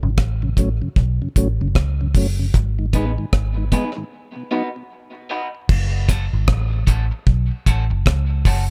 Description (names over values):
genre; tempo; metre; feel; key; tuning
dub reggae; 76 BPM; 4/4; swing 60% on 16ths; F# dorian; A4 = 440 Hz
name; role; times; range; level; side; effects
mellow tonewheel organ; accompaniment; 0.0-8.6 s; F#2 to D#4; -28 LUFS; equal; slow rotary speaker, high-pass filter
vintage muted fingered electric bass; bass; 0.0-8.7 s; F#1 to C#2; -22 LUFS; equal; none
deep reggae drum kit; drums; 0.2-8.7 s; crash cymbal, hi-hat, kick drum, rim click; -20 LUFS; equal; none
electric guitar at the edge of break-up; accompaniment; 2.9-8.6 s; A3 to B4; -30 LUFS; equal; high-pass filter, tape echo
room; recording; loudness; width
little or no reverb; none; -20 LUFS; mono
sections
0.0-5.7 A section; 5.7-8.7 A section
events
break 0.0-2.5, 4.1-5.7; filter sweep 2.5-8.7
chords
0.0 F#m; 2.5 G#m; 4.1 B; 5.7 F#m